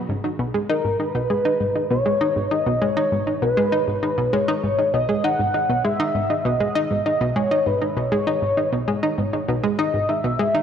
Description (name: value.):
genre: ambient.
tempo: 99 BPM.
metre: 4/4.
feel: straight.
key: G# minor.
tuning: A4 = 440 Hz.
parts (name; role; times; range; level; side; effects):
analog pluck; riff; 0.1-10.6 s; G#2 to D#4; -22 LUFS; equal; chorus, tape echo.
pulse-width lead; melody; 0.7-10.6 s; A#4 to F#5; -22 LUFS; left 1 dB; chorus, tape echo.
room: wet concert hall reverb, RT60 2.1 s.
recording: none.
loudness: -19 LUFS.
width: side -8 dB against mid.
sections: 0.1-10.6 A section.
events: none.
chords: 0.1 G#m.